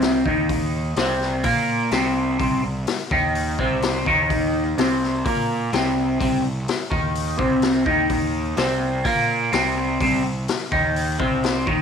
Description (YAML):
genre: psychedelic rock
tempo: 126 BPM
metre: 4/4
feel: straight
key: unclear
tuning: A4 = 440 Hz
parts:
  - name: electric guitar through a small old amp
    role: riff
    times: 0.0-11.8 s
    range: C3 to Bb4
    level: -20 LUFS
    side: equal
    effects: phaser
  - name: fuzz picked electric bass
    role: bass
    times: 0.0-11.8 s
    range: C2 to Bb2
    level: -26 LUFS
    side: right 1 dB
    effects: overdrive, tube saturation
  - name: raw garage drum kit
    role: drums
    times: 0.0-11.8 s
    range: hi-hat, kick drum, snare drum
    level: -26 LUFS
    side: left 3 dB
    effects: none
room: light reverb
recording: 1960s-style stereo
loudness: -19 LUFS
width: side -7 dB against mid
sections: 0.0-11.8 A section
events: none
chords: 0.0 Cm7